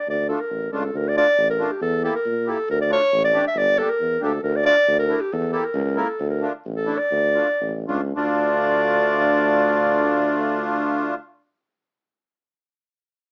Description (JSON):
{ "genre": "klezmer", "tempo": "103-137 BPM", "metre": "2/4", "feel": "straight", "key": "D harmonic minor", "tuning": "A4 = 440 Hz", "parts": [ { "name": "dark clarinet", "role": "melody", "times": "0.0-11.2 s", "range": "G4 to E5", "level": "-23 LUFS", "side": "equal", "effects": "none" }, { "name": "warm tuba", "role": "bass", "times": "0.1-11.1 s", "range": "G1 to Bb2", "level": "-28 LUFS", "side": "equal", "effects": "none" }, { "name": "accordion", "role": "accompaniment", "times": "0.3-11.1 s", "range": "A3 to Bb4", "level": "-26 LUFS", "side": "equal", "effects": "light tremolo tuning" } ], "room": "light reverb", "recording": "small speaker sound", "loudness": "-21 LUFS", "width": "mono", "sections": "0.9-8.2 A section; 8.2-10.5 B section", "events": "slowing down 6.2-8.2", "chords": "0.1 Dm; 1.8 Edim; 2.7 Dm; 3.6 Gm; 4.4 Dm; 5.3 Edim; 6.2 Dm" }